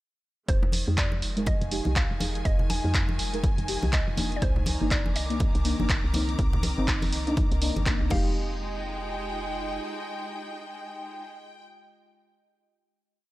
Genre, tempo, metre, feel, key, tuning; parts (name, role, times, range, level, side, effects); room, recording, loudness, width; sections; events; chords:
deep house; 122 BPM; 4/4; swing 59% on 16ths; F dorian; A4 = 440 Hz
mallet-like synth pluck; melody; 0.5-11.2 s; C5 to Ab5; -38 LUFS; equal; chorus, analog delay
warbly tape-like pad; sustained chords; 1.2-11.2 s; Eb3 to D6; -40 LUFS; right 2 dB; chorus, built-in reverb, sidechain pumping
woody FM bass; bass; 0.5-9.8 s; F1 to F2; -30 LUFS; equal; tube saturation, sidechain pumping
electronic kick drum; drums; 0.5-8.2 s; -26 LUFS; equal; studio reverb
punchy analog drum machine; drums; 0.5-8.2 s; crash cymbal, handclaps, hi-hat; -32 LUFS; equal; studio reverb
rich symphonic string section; texture; 0.5-11.6 s; Eb3 to D6; -37 LUFS; left 1 dB; sidechain pumping
congas; percussion; 0.6-8.2 s; -35 LUFS; left 1 dB
deep mellow chord stab; stabs; 0.9-11.2 s; G3 to Bb4; -32 LUFS; left 1 dB; chorus, sidechain pumping, tape echo
little or no reverb; -24 LUFS; side -17 dB against mid
0.5-8.4 groove; 8.4-12.3 final note
filter sweep on synth stab 0.5-8.4
0.5 Fm9; 4.4 Cm9; 8.1 Fm9